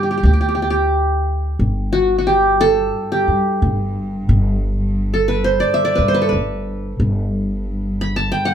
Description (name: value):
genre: turkish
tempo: 89 BPM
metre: 4/4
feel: straight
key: G makam rast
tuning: A4 = 440 Hz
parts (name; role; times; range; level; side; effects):
- qanun; melody; 0.0-8.5 s; F#4 to B5; -17 LUFS; right 1 dB; none
- mellow clarinet; second line; 0.0-0.9 s; G4; -30 LUFS; left 6 dB; none
- upright bass; bass; 0.0-8.3 s; G1 to G2; -19 LUFS; equal; none
- dark cello; drone; 1.6-8.5 s; G2; -26 LUFS; equal; none
room: moderate studio reverb, RT60 0.6 s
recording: band playing live in one room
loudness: -15 LUFS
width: side -9 dB against mid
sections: 0.0-1.6 A section; 1.6-8.5 B section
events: none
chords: none